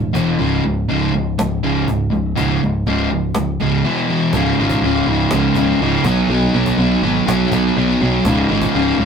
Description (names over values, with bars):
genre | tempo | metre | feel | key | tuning
hard rock | 122 BPM | 4/4 | straight | unclear | A4 = 440 Hz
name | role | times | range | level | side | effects
overdriven semi-hollow guitar | riff | 0.0-9.1 s | Db2 to Cb4 | -15 LUFS | equal | none
modern bright fingered electric bass | bass | 0.0-9.1 s | Db1 to Cb2 | -22 LUFS | equal | none
cajon | drums | 0.1-8.7 s | none | -26 LUFS | equal | none
room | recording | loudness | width
wet small room reverb, RT60 0.5 s | rough rehearsal-room recording, tube saturation | -14 LUFS | side -6 dB against mid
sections
0.0-4.3 A section; 4.3-9.1 B section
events
none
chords
0.2 E5; 0.4 Db5; 3.9 E5; 4.3 Db5; 6.1 Cb5; 8.3 Db5